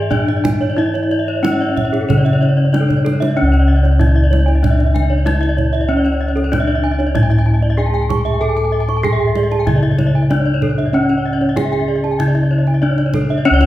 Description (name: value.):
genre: Balinese gamelan.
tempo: 95 BPM.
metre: 4/4.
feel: straight.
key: C# pelog.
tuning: A4 = 440 Hz.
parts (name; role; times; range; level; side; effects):
gamelan-type bronze metallophone; melody; 0.0-13.7 s; C#4 to A4-20c; -19 LUFS; left 1 dB; none.
gamelan-type bronze metallophone; arpeggios; 0.0-13.7 s; A4-20c to A5-20c; -25 LUFS; left 4 dB; none.
gamelan-type bronze metallophone; arpeggios; 0.0-13.6 s; G#4-30c to C#6; -24 LUFS; right 5 dB; none.
gamelan-type bossed gongs; bass; 0.0-13.7 s; C#2 to A4-20c; -15 LUFS; equal; none.
kendang; percussion; 0.1-13.7 s; none; -22 LUFS; right 2 dB; none.
room: wet recital hall reverb, RT60 1.4 s.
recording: heard from further back in the room.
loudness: -13 LUFS.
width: side -14 dB against mid.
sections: 0.0-3.4 A section; 3.4-13.5 B section.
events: drum fill 2.9-3.4.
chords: none.